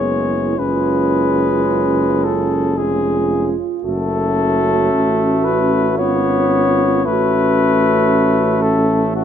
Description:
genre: classical, hymn-like piece for brass band.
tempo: 56 BPM.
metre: 3/4.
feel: rubato.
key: F# minor.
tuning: A4 = 439 Hz.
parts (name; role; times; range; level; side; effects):
mellow cornet; melody; 0.0-9.2 s; F#4 to C#5; -19 LUFS; left 7 dB; none.
dark French horn section; second line; 0.0-9.2 s; E4 to F#4; -21 LUFS; right 7 dB; none.
brilliant trombone; accompaniment; 0.0-9.2 s; G#3 to B3; -21 LUFS; right 5 dB; none.
warm euphonium; accompaniment; 0.0-9.2 s; B3 to C#4; -21 LUFS; left 2 dB; none.
mellow tuba; bass; 0.0-9.2 s; E#1 to A1; -21 LUFS; equal; none.
room: light reverb.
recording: close, detailed microphones.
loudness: -14 LUFS.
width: side -9 dB against mid.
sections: 0.0-9.2 A section.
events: none.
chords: 0.0 E/F#; 0.6 C#7/F#; 3.8 F#m; 6.0 C#7/G#; 7.1 F#m/A.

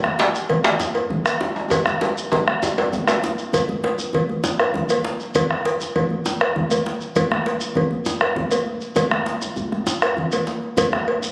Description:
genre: west african traditional, West African drum ensemble.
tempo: 132 BPM (dotted quarters).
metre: 12/8.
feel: straight.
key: none.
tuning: none.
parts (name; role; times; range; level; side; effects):
bombo; percussion; 0.0-11.1 s; none; -27 LUFS; equal; none.
congas; percussion; 0.0-11.2 s; none; -30 LUFS; equal; none.
djembe; percussion; 0.0-11.3 s; none; -32 LUFS; equal; none.
djembe; percussion; 0.2-3.2 s; none; -25 LUFS; equal; none.
shekere; percussion; 0.3-11.3 s; none; -34 LUFS; equal; none.
cowbell; percussion; 0.5-11.2 s; none; -25 LUFS; equal; none.
room: wet recital hall reverb, RT60 1.4 s.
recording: recorded on a phone in the room, club reverb, compression.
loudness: -21 LUFS.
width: mono.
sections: 0.0-3.5 A section; 3.5-11.3 B section.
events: drum fill 1.7-3.5.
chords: none.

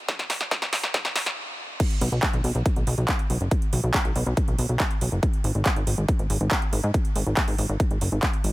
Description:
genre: uplifting trance.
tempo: 140 BPM.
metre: 4/4.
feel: straight.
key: unclear.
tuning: A4 = 442 Hz.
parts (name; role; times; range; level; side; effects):
big-room dance drum kit; drums; 0.1-8.5 s; crash cymbal, handclaps, hi-hat, snare drum; -28 LUFS; right 1 dB; sidechain pumping on hats, high-pass filter on hats, high-pass filter on snare, sidechain pumping on cymbals, high-pass filter on cymbals.
electronic kick drum; drums; 0.1-8.3 s; none; -24 LUFS; equal; high-pass filter on kick.
plucky analog bass; bass; 2.0-8.5 s; F#1 to G#2; -24 LUFS; equal; sidechain pumping.
room: digital ambience.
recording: none.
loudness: -22 LUFS.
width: side -18 dB against mid.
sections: 0.0-1.8 A section; 1.8-8.5 B section.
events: build-up 0.0-1.8; drum fill 0.0-1.4; stop 1.4-1.8; drop 1.8-8.5.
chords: none.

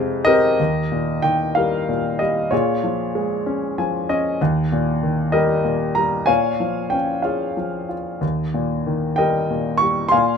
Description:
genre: classical, lyrical solo piano.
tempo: 63 BPM (dotted quarters).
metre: 6/8.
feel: rubato.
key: unclear.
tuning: A4 = 440 Hz.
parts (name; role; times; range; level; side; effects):
warm grand piano; solo; 0.0-10.4 s; Eb2 to Db6; -18 LUFS; left 1 dB; none.
room: light reverb.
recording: none.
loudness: -18 LUFS.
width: side -6 dB against mid.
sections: 0.6-10.4 A section.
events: grand piano fill 3.5-4.4.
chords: 0.0 Fm; 0.6 Eb; 2.5 Bbm7; 4.4 Eb; 6.3 Bbm7; 8.2 Eb.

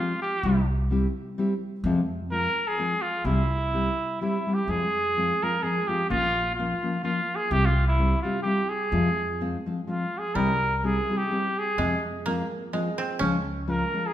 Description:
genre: mexican folk, mariachi.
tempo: 127 BPM.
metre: 3/4.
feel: swing 54% on 8ths.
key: F harmonic minor.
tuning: A4 = 441 Hz.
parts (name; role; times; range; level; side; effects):
clear trumpet; melody; 0.0-14.1 s; E4 to Bb4; -26 LUFS; right 1 dB; none.
koto; second line; 0.0-0.2, 10.4-14.1 s; G3 to Db4; -31 LUFS; right 4 dB; none.
nylon-string guitar; accompaniment; 0.0-14.1 s; F2 to G4; -28 LUFS; left 2 dB; none.
upright bass; bass; 0.4-13.8 s; Bb1 to F2; -28 LUFS; equal; none.
room: wet recital hall reverb, RT60 1.6 s.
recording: minimal, uncompressed stereo recording.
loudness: -23 LUFS.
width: side -12 dB against mid.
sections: 0.0-14.1 A section.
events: none.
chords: 0.4 C; 1.8 Fm; 3.2 C; 4.7 Fm; 6.1 Bbm; 7.5 C; 8.9 Fm; 10.4 C; 11.8 Fm; 13.2 Db.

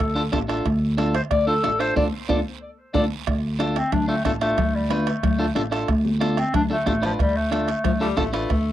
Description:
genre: latin, cumbia.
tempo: 184 BPM.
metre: 4/4.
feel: straight.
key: D dorian.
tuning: A4 = 440 Hz.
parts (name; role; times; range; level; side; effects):
clear clarinet; melody; 0.0-8.1 s; F3 to D5; -25 LUFS; left 1 dB; cassette tape, tape echo.
upright bass; bass; 0.0-8.7 s; A1 to D2; -24 LUFS; equal; none.
bombo; percussion; 0.0-8.7 s; none; -28 LUFS; right 3 dB; none.
guiro; percussion; 0.0-8.7 s; none; -42 LUFS; right 11 dB; none.
timbales; percussion; 0.0-8.7 s; none; -36 LUFS; right 11 dB; none.
clean electric guitar; accompaniment; 0.2-8.5 s; D4 to B4; -25 LUFS; equal; cassette tape.
congas; percussion; 0.3-8.3 s; none; -31 LUFS; left 9 dB; none.
bright tenor saxophone; second line; 7.8-8.7 s; F3 to A3; -29 LUFS; left 7 dB; cassette tape.
room: light reverb.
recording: home recording on cassette.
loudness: -20 LUFS.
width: side -12 dB against mid.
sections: 0.0-3.3 A section; 3.3-8.7 A section.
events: band accent 2.0-3.3; drum fill 2.5-3.3.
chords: 0.0 Dm.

